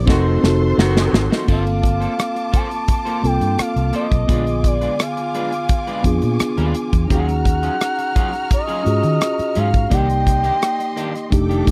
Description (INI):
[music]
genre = lush 1970s-style soul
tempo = 85 BPM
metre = 4/4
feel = straight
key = unclear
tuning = A4 = 440 Hz
[part]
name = rich studio string section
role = second line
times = 0.0-11.7 s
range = F4 to F6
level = -33 LUFS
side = equal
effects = none
[part]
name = reed electric piano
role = accompaniment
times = 0.0-11.7 s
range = D3 to D5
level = -25 LUFS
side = equal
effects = none
[part]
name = tonewheel organ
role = sustained chords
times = 0.0-1.5 s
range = Eb3 to A4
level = -33 LUFS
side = equal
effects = none
[part]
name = vintage muted fingered electric bass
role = bass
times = 0.0-11.7 s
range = F1 to Eb3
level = -22 LUFS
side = equal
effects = none
[part]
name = electric guitar at the edge of break-up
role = riff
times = 0.1-11.7 s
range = Eb3 to C5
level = -31 LUFS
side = equal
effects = lush chorus
[part]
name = clear horn section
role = stabs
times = 0.1-1.3 s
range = Eb3 to Gb4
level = -28 LUFS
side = equal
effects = none
[part]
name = modern studio drum kit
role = drums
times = 0.1-11.7 s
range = crash cymbal, hi-hat, kick drum, rim click, snare drum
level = -20 LUFS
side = equal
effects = none
[part]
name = expressive synth lead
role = melody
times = 1.5-11.3 s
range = D5 to A5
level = -25 LUFS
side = equal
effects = chorus
[sound]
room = small room ambience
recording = dry, close 1970s-style studio recording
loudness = -18 LUFS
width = mono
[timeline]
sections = 0.0-1.5 A section; 1.5-11.7 B section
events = drum fill 0.1-1.5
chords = 0.1 F7b9; 1.5 Gm11; 4.3 Bb7b9; 7.1 Ebm11; 9.9 Cm9